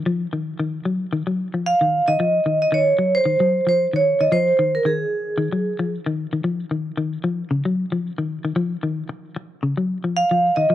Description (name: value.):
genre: afrobeat.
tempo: 113 BPM.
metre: 4/4.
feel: swing 55% on 16ths.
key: unclear.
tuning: A4 = 441 Hz.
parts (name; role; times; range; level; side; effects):
semi-hollow electric guitar; arpeggios; 0.0-10.7 s; Db3 to Gb3; -23 LUFS; left 3 dB; none.
vibraphone with medium mallets; melody; 1.7-5.9, 10.2-10.7 s; Ab4 to F5; -17 LUFS; right 2 dB; none.
room: small room ambience.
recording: dry, close 1970s-style studio recording.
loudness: -18 LUFS.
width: side -12 dB against mid.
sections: 0.0-2.2 A section; 2.2-10.7 B section.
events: none.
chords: 0.0 Ebmadd9; 6.4 Gb5.